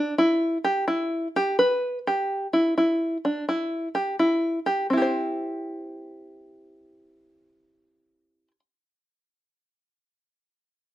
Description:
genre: progressive instrumental, progressive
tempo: 127 BPM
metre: 7/4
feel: straight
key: C major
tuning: A4 = 441 Hz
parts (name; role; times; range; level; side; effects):
- open-back banjo; solo; 0.0-8.6 s; C4 to C5; -22 LUFS; equal; none
room: light reverb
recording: minimal, uncompressed stereo recording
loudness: -22 LUFS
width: side -14 dB against mid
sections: 0.0-4.9 A section; 4.9-8.2 B section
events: none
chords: 0.0 Em; 4.9 C

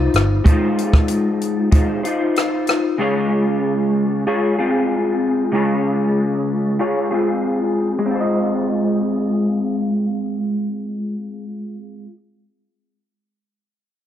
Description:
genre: indie pop, bedroom pop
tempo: 95 BPM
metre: 4/4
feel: straight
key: Ab major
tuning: A4 = 440 Hz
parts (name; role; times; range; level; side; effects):
- electric guitar through a small old amp; accompaniment; 0.0-12.2 s; Db3 to Eb5; -18 LUFS; left 1 dB; ensemble chorus, warbly pitch drift, low-pass filter
- compact cocktail drum kit; drums; 0.1-2.8 s; hi-hat, kick drum, rim click; -16 LUFS; equal; none
room: light reverb, studio ambience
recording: none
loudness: -16 LUFS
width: side -10 dB against mid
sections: 0.0-8.1 A section; 8.1-10.6 B section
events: filter sweep on clean electric guitar 0.0-8.1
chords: 0.0 Ab6; 3.0 Dbmaj7; 8.1 Ab6

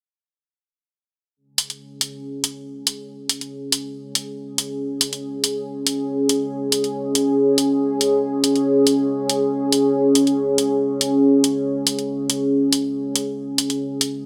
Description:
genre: deep dubstep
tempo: 140 BPM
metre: 4/4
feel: swing 55% on 16ths, half-time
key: unclear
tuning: A4 = 440 Hz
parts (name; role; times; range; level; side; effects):
- dark analog pad; sustained chords; 2.2-14.3 s; C#4 to G#4; -22 LUFS; equal; chorus
- electronic hi-hat; drums; 1.6-14.1 s; none; -21 LUFS; equal; small room ambience
room: wet lush hall reverb, RT60 2.0 s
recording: none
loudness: -21 LUFS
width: mono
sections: 1.4-14.3 A section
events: none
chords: 1.4 C#5

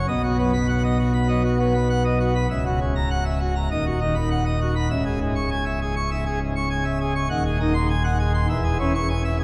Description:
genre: classical, organ toccata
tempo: 100 BPM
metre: 4/4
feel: straight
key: B major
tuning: A4 = 437 Hz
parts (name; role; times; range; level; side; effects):
- pipe organ, plenum; solo; 0.0-9.4 s; C#1 to C#6; -22 LUFS; equal; none
room: wet church reverb, RT60 2.8 s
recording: vinyl crackle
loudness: -23 LUFS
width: mono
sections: 0.1-9.4 A section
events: none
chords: 0.1 B; 2.5 F#7/C#; 3.7 B/D#; 4.9 C#m; 7.3 G#7/D#; 8.5 C#m/E

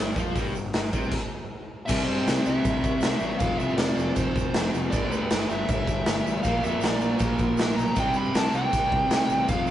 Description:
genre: garage rock duo or trio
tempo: 158 BPM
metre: 4/4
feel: straight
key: unclear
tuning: A4 = 441 Hz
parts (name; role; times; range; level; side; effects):
- fuzz guitar; riff; 0.0-9.7 s; F2 to F4; -28 LUFS; equal; distortion
- fuzz fingered electric bass; bass; 0.0-9.7 s; F1 to G2; -33 LUFS; equal; overdrive, tube saturation
- raw garage drum kit; drums; 0.2-9.6 s; crash cymbal, hi-hat, kick drum, snare drum; -26 LUFS; equal; none
- egg shaker; percussion; 0.2-9.7 s; none; -45 LUFS; right 4 dB; none
- fuzz lead guitar; melody; 1.9-9.7 s; Bb4 to B5; -29 LUFS; equal; distortion
room: light reverb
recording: rough rehearsal-room recording, nothing above 10.5 kHz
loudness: -22 LUFS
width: side -12 dB against mid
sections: 0.0-1.9 A section; 1.9-9.7 B section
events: stop 1.1-1.9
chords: 0.0 G5; 1.9 C; 3.4 F5; 4.9 G; 6.4 Bb; 8.0 C5

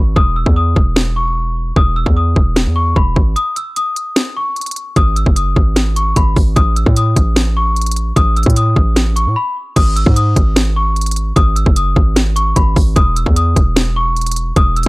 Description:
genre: hip hop, trap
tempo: 150 BPM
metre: 4/4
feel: half-time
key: G# phrygian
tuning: A4 = 442 Hz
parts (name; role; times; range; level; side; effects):
- hard-hitting 808-style bass; bass; 0.0-14.9 s; E1 to A2; -15 LUFS; equal; none
- worn celesta; melody; 0.2-14.9 s; B5 to E6; -19 LUFS; left 2 dB; none
- trap drum kit; drums; 0.2-14.9 s; crash cymbal, hi-hat, kick drum, snare drum; -13 LUFS; equal; none
room: little or no reverb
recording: dry, gritty hardware recording, transformer saturation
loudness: -11 LUFS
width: side -23 dB against mid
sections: 0.0-9.8 A section; 9.8-14.9 B section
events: break 0.0-3.4, 3.4-4.2, 9.4-9.8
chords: 0.2 N.C.; 3.4 G#5; 6.6 A; 9.8 G#5; 13.0 C#madd9/E

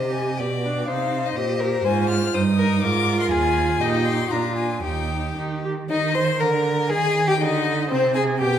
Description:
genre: quick classical-period movement for string quartet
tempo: 122 BPM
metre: 2/4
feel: rubato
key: Eb major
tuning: A4 = 440 Hz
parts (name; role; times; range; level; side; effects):
- rich violin; melody; 0.0-8.6 s; C5 to F6; -25 LUFS; left 8 dB; none
- rich violin; second line; 0.0-8.6 s; C4 to Eb5; -27 LUFS; left 2 dB; none
- clear viola; accompaniment; 0.0-8.6 s; C4 to C5; -26 LUFS; right 2 dB; none
- rich cello; bass; 0.0-8.6 s; Eb2 to Eb3; -24 LUFS; right 4 dB; none
room: wet recital hall reverb, RT60 1.4 s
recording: none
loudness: -19 LUFS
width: side -9 dB against mid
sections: 0.0-5.9 A section; 5.9-8.6 A section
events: none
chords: 0.4 G/B; 0.9 Cm; 1.9 Ab; 2.3 Eb/G; 2.8 Ab5; 3.8 Eb/Bb; 4.3 Bb7; 4.8 Eb; 5.9 Cm/Eb; 6.4 Bb/D; 6.9 Ebadd11; 7.9 Ab/C

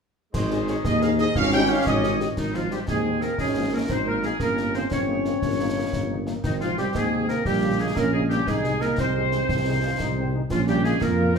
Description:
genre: military-style march for wind band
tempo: 118 BPM (dotted quarters)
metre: 6/8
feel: straight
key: Ab major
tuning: A4 = 439 Hz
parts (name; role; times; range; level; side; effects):
- mellow trumpet section; melody; 0.3-11.4 s; Db4 to G5; -29 LUFS; right 2 dB; none
- clear woodwind section; second line; 0.3-11.4 s; Eb4 to Eb5; -28 LUFS; left 1 dB; none
- mellow trombone section; sustained chords; 0.3-11.4 s; G3 to F4; -30 LUFS; right 2 dB; none
- mellow tuba; bass; 0.3-11.4 s; G1 to F2; -26 LUFS; right 1 dB; none
- concert snare drum, clash cymbals and concert bass drum; drums; 0.3-11.4 s; none; -31 LUFS; left 2 dB; none
- mellow French horn section; accompaniment; 0.5-11.4 s; C3 to Ab4; -32 LUFS; left 4 dB; none
- mellow euphonium; second line; 2.4-11.4 s; Eb3 to Db4; -28 LUFS; right 2 dB; none
room: wet large studio reverb, RT60 1.0 s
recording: heard from further back in the room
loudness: -21 LUFS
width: side -6 dB against mid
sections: 0.3-2.4 A section; 2.4-11.4 B section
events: none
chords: 0.3 Ab; 1.4 Eb7/Ab; 2.4 Ab; 3.4 Bbm7/Ab; 4.4 Eb7/G; 6.4 Ab; 7.5 Gdim/Bb; 8.5 Ab/C; 10.5 Bbm

